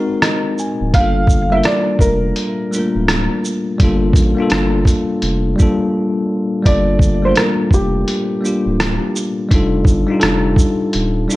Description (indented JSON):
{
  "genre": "lo-fi hip hop",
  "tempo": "84 BPM",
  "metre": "4/4",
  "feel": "swing 63% on 16ths",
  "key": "G minor",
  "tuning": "A4 = 440 Hz",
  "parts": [
    { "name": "bell-like tine electric piano", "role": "accompaniment", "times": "0.0-11.4 s", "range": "G3 to Ab5", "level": "-17 LUFS", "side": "left 2 dB", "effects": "medium stereo tremolo, cassette tape" },
    { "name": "lo-fi sampler-style drum kit", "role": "drums", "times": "0.2-11.4 s", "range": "hi-hat, kick drum, rim click, shaker", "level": "-16 LUFS", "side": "equal", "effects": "none" },
    { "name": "saturated sub bass", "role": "bass", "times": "0.8-11.3 s", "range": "D1 to A1", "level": "-19 LUFS", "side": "equal", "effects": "none" },
    { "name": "felt-muted upright piano", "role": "melody", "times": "0.9-9.1 s", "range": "G4 to F5", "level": "-20 LUFS", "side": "right 1 dB", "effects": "analog delay" }
  ],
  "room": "digital ambience",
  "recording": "cassette tape",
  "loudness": "-13 LUFS",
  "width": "side -18 dB against mid",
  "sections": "0.0-6.7 A section; 6.7-11.4 A section",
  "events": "tine electric piano fill 0.0-0.9; break 5.9-6.7",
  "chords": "0.0 Ab9; 0.9 Gm9; 9.5 F13",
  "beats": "0.23 | 0.94 1.65 2.37 3.08 | 3.80 4.51 5.22 5.94 | 6.65 7.37 8.08 8.80 | 9.51 10.22 10.94"
}